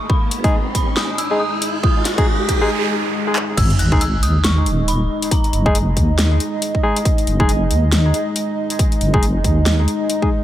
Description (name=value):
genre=deep dubstep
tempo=138 BPM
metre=4/4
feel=swing 59% on 16ths, half-time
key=G# minor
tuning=A4 = 440 Hz
part: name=dark detuned synth bell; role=melody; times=0.0-5.9 s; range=A#5 to F#6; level=-26 LUFS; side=right 1 dB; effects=chorus, dub echo
part: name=dark analog pad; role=sustained chords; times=0.0-10.4 s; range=G#3 to D#5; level=-24 LUFS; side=right 1 dB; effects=chorus
part: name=riser, noise sweep and sub drop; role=sound effects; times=0.0-5.3 s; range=none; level=-23 LUFS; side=equal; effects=none
part: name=electronic kick drum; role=drums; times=0.1-10.3 s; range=none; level=-18 LUFS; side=equal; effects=none
part: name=deep soft wobble bass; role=bass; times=0.3-9.9 s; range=D#1 to D#2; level=-17 LUFS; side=equal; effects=chorus, high-pass filter
part: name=dubstep drum kit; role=drums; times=0.3-10.2 s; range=crash cymbal, handclaps, hi-hat, snare drum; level=-23 LUFS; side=left 1 dB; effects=high-pass filter on hats, high-pass filter on snare, high-pass filter on cymbals
part: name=barky tine electric piano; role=stabs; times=0.4-10.3 s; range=G#3 to G#4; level=-24 LUFS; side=left 1 dB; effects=overdrive, low-pass filter, dub echo
room=light reverb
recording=none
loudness=-15 LUFS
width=side -12 dB against mid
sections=0.0-3.6 A section; 3.6-10.4 B section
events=build-up 0.0-3.6; riser 0.0-2.7; filter sweep on analog synth pad 0.0-3.6; noise sweep 1.8-3.6; break 2.7-3.6; drum fill 3.4; drop 3.6-10.4; impact 3.6-5.3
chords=0.0 G#5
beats=| 0.10 0.53 0.97 1.40 | 1.84 2.27 2.71 3.14 | 3.58 4.01 4.44 4.88 | 5.31 5.75 6.18 6.62 | 7.05 7.49 7.92 8.36 | 8.79 9.23 9.66 10.10